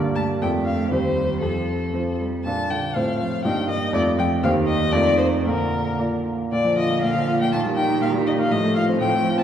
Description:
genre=quick classical-period movement for piano trio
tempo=112-125 BPM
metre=2/4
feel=rubato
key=Bb major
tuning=A4 = 436 Hz
part: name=clear concert grand piano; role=accompaniment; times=0.0-9.4 s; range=Eb2 to Eb5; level=-21 LUFS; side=right 1 dB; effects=none
part: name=rich violin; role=melody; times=0.2-9.4 s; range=A4 to A5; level=-24 LUFS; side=left 3 dB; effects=none
part: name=rich cello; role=second line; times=0.2-9.4 s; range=D3 to A3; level=-28 LUFS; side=right 5 dB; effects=none
room=wet concert hall reverb, RT60 2.3 s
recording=heard from further back in the room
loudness=-19 LUFS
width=side -9 dB against mid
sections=0.0-6.5 A section; 6.5-9.4 B section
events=none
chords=0.4 Dm/F; 0.9 Cm/Eb; 1.4 F; 2.5 Gm/Bb; 3.0 F/A; 3.5 Eb/G; 3.9 Dm/F; 4.4 Cm7/Eb; 4.9 F7; 5.5 Bb; 7.5 Eb/Bb; 8.5 F/A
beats=| 0.42 0.92 | 1.42 1.94 | 2.45 2.96 | 3.45 3.94 | 4.43 4.93 | 5.46 5.99 | 6.52 7.03 | 7.52 8.01 | 8.50 9.00

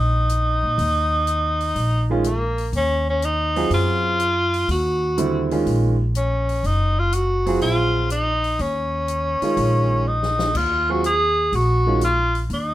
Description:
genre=modal jazz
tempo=123 BPM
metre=4/4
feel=swing 69% on 8ths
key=Eb dorian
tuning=A4 = 436 Hz
part: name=clear tenor saxophone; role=melody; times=0.0-12.7 s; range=Bb3 to Ab4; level=-21 LUFS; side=equal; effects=none
part: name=upright bass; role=bass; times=0.0-12.7 s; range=Gb1 to Bb2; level=-22 LUFS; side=equal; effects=none
part: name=open jazz drum kit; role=drums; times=0.3-12.7 s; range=crash cymbal, hi-hat, kick drum, snare drum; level=-34 LUFS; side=left 3 dB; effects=none
part: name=clear baby grand piano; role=accompaniment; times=2.1-12.0 s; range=D3 to Ab4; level=-23 LUFS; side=right 3 dB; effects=none
room=moderate club reverb, RT60 0.8 s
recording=none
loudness=-18 LUFS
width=side -14 dB against mid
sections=0.0-2.7 A section; 2.7-12.7 A section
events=drum fill 10.1-10.5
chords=0.0 Eb5; 2.7 Ebm9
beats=0.30 | 0.79 1.27 1.76 2.25 | 2.74 3.23 3.71 4.20 | 4.69 5.18 5.67 6.15 | 6.64 7.13 7.62 8.11 | 8.60 9.08 9.57 10.06 | 10.55 11.04 11.53 12.01 | 12.50

